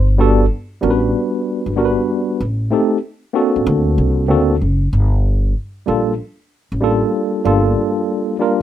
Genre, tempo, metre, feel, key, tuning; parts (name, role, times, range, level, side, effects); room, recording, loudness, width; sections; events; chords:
hip hop; 95 BPM; 4/4; swing 66% on 16ths; G minor; A4 = 438 Hz
tine electric piano; accompaniment; 0.0-8.6 s; G3 to B4; -16 LUFS; equal; overdrive, medium stereo tremolo
upright bass; bass; 0.0-7.7 s; F#1 to D2; -16 LUFS; equal
light reverb; rough home demo mix; -14 LUFS; side -11 dB against mid
0.0-8.6 A section
0.0 Gmaj7; 2.4 Am7b5; 3.7 D7b13; 4.9 Gm7